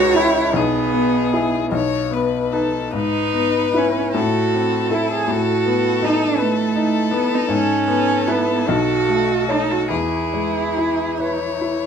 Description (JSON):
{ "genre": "classical, slow romantic movement for piano trio", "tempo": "46-55 BPM (dotted quarters)", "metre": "6/8", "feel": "rubato", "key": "E major", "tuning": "A4 = 440 Hz", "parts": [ { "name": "rich violin", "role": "melody", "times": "0.0-11.9 s", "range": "G#4 to C#5", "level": "-24 LUFS", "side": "left 7 dB", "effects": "none" }, { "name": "rich cello", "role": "second line", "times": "0.0-11.9 s", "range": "A3 to G#4", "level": "-20 LUFS", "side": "right 6 dB", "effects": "none" }, { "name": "clear baby grand piano", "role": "accompaniment", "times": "0.0-11.9 s", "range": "B1 to C#5", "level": "-20 LUFS", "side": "left 3 dB", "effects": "none" } ], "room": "moderate large studio reverb, RT60 0.9 s", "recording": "none", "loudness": "-16 LUFS", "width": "side -7 dB against mid", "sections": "0.0-11.9 A section", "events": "none", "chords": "0.0 C#m; 0.5 E/B; 1.7 B; 2.9 E/G#; 4.2 F#m7b5/A; 5.3 B7/A; 7.5 E/G#; 8.7 B9; 9.9 E", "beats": "| 0.54 1.73 | 2.94 4.17 | 5.29 6.40 | 7.51 8.70 | 9.91 11.20" }